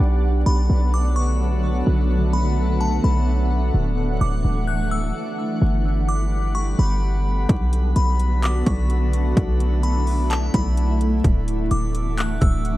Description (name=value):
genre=hip hop, atmospheric cloud-rap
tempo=128 BPM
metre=4/4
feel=half-time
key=B minor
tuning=A4 = 440 Hz
part: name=shimmering ambient pad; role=sustained chords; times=0.0-12.8 s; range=D3 to F#5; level=-26 LUFS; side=equal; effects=chorus, built-in reverb
part: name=warm 808-style bass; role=bass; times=0.0-12.8 s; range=D1 to B1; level=-19 LUFS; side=equal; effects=none
part: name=drifting glass-harmonics texture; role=texture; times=0.0-12.8 s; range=F#4 to D6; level=-36 LUFS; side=left 2 dB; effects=chorus, built-in reverb
part: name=delicate synth tine bell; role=melody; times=0.5-12.6 s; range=A5 to F#6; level=-30 LUFS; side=left 2 dB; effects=chorus, phaser, tremolo, tape echo
part: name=trap drum kit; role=drums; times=7.5-12.8 s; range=handclaps, hi-hat, kick drum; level=-22 LUFS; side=equal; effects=none
room=digital ambience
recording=dark, warm production, vinyl crackle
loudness=-18 LUFS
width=side -16 dB against mid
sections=0.0-12.8 A section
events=none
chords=0.0 Bm7; 3.7 Dadd9; 5.6 Gmaj7; 7.5 Bm7; 11.2 Dadd9